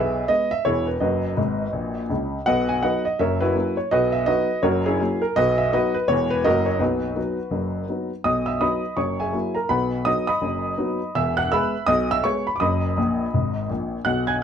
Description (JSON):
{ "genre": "jazz, stride piano", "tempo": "166 BPM", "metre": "4/4", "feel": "swing 61% on 8ths", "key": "B major", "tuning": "A4 = 441 Hz", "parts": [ { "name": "warm upright piano", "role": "solo", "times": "0.0-14.4 s", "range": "E1 to G#6", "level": "-20 LUFS", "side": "equal", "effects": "none" } ], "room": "moderate studio ambience, RT60 0.5 s", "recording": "dark, warm production", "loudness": "-20 LUFS", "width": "side -8 dB against mid", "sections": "0.0-8.3 A section; 8.3-14.4 A section", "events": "upright piano fill 1.4-2.5, 13.0-14.1", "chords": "0.0 E; 1.0 B/F#; 1.7 F#; 2.5 B; 3.2 F#7; 3.9 B; 4.6 F#7; 5.4 B; 6.1 E; 6.4 F#7; 6.8 B; 9.0 F#9; 9.7 B; 11.2 E; 12.6 B/F#; 13.3 G#madd9" }